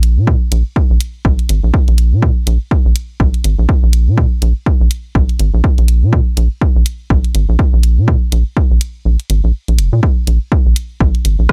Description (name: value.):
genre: minimal techno.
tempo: 123 BPM.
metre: 4/4.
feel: swing 58% on 16ths.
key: unclear.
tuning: A4 = 440 Hz.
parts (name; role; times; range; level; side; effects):
rubbery square bass; bass; 0.0-11.5 s; F1 to Bb2; -14 LUFS; equal; sidechain pumping.
punchy analog drum machine; drums; 0.0-11.5 s; hi-hat, rim click; -24 LUFS; equal; none.
electronic kick drum; drums; 0.3-11.5 s; none; -15 LUFS; equal; none.
room: little or no reverb.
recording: none.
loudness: -13 LUFS.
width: mono.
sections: 0.0-11.5 A section.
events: kick drops out 9.1-10.0.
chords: none.